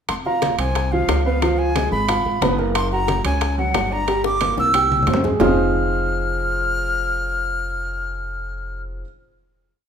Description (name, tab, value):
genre	latin, salsa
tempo	181 BPM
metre	4/4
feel	straight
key	F phrygian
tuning	A4 = 442 Hz
part	breathy bright silver concert flute	melody	0.1-8.8 s	F5 to F6	-23 LUFS	equal	none
part	upright bass	bass	0.1-9.0 s	F1 to F2	-24 LUFS	equal	none
part	bongos	percussion	0.1-5.5 s	none	-28 LUFS	left 7 dB	none
part	congas	percussion	0.1-5.5 s	none	-28 LUFS	left 2 dB	none
part	timbales	percussion	0.1-5.5 s	none	-27 LUFS	right 5 dB	none
part	clear upright piano	accompaniment	0.3-9.0 s	F3 to G5	-22 LUFS	right 2 dB	none
room	moderate large studio reverb, RT60 1.3 s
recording	minimal, uncompressed stereo recording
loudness	-17 LUFS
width	side -7 dB against mid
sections	0.1-5.4 verse; 5.4-8.1 final chord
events	drum fill 4.1-5.4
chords	0.1 Fm; 1.4 Db7; 2.7 Gb; 4.1 Gm; 4.7 C; 5.4 Fm7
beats	| 0.09 0.42 0.75 1.09 | 1.42 1.75 2.08 2.42 | 2.75 3.08 3.41 3.75 | 4.08 4.41 4.74 5.07 | 5.40 5.74 6.07 6.40 | 6.73 7.06 7.39 7.73